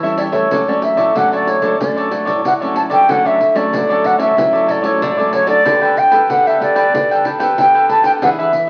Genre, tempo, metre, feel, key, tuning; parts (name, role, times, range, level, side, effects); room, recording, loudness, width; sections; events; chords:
samba and choro; 93 BPM; 4/4; straight; D major; A4 = 440 Hz
cavaquinho; accompaniment; 0.0-8.7 s; D4 to G5; -22 LUFS; equal
nylon-string guitar; accompaniment; 0.0-8.7 s; A2 to A4; -26 LUFS; equal
nylon-string guitar; bass; 0.0-8.7 s; A2 to A3; -27 LUFS; equal
pandeiro; percussion; 0.0-8.7 s; -29 LUFS; equal
mellow wooden flute; melody; 0.2-8.7 s; C#5 to A5; -16 LUFS; equal
moderate large studio reverb, RT60 1.1 s; very old 78 rpm record, vinyl crackle; -14 LUFS; mono
0.0-3.1 A section; 3.1-8.7 B section
0.0 A7; 0.5 Dmaj7; 5.7 Gadd9/D